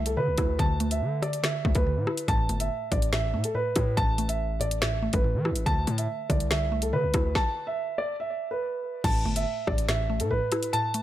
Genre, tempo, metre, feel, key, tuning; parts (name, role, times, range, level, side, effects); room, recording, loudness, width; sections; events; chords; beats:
hip hop, drill; 142 BPM; 4/4; half-time; A minor; A4 = 440 Hz
dark concert grand piano; melody; 0.0-11.0 s; A4 to A5; -29 LUFS; right 2 dB; low-pass filter, ping-pong delay
mallet-like synth pluck; accompaniment; 0.0-11.0 s; A2 to E4; -32 LUFS; equal; chorus, low-pass filter
hard-hitting 808-style bass; bass; 0.0-10.4 s; G1 to E3; -29 LUFS; equal
drill drum kit; drums; 0.1-11.0 s; crash cymbal, finger snaps, hi-hat, kick drum, rim click, snare drum; -28 LUFS; equal; overdrive
digital ambience; -24 LUFS; side -13 dB against mid
0.0-9.0 A section; 9.0-11.0 B section
stop 7.4-9.0
0.0 Dsus2; 2.3 Asus2; 5.7 Dsus2; 9.0 Asus2
0.17 | 0.59 1.01 1.44 1.86 | 2.28 2.70 3.13 3.55 | 3.97 4.39 4.82 5.24 | 5.66 6.08 6.51 6.93 | 7.35 7.78 8.20 8.62 | 9.04 9.46 9.89 10.31 | 10.73